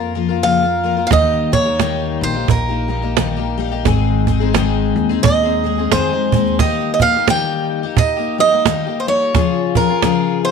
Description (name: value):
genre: acoustic folk duo or small band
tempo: 88 BPM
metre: 4/4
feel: swing 60% on 8ths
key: Eb mixolydian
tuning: A4 = 443 Hz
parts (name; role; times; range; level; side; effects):
- picked swing-style acoustic guitar; melody; 0.0-10.5 s; Bb4 to G5; -17 LUFS; right 3 dB; none
- picked twelve-string acoustic guitar; accompaniment; 0.0-10.5 s; Ab2 to Bb4; -19 LUFS; left 10 dB; none
- upright bass; bass; 0.0-6.6 s; Ab1 to F2; -21 LUFS; right 1 dB; none
- cajon; percussion; 1.1-10.2 s; none; -17 LUFS; right 7 dB; none
room: light reverb, studio ambience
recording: 1960s-style stereo with parts hard left and right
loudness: -14 LUFS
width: side -6 dB against mid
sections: 0.0-6.6 A section; 6.6-10.5 B section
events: steel-string acoustic guitar solo 0.0-6.6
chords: 0.0 Bbm; 1.1 Eb; 3.9 Ab; 6.6 Eb; 9.3 Db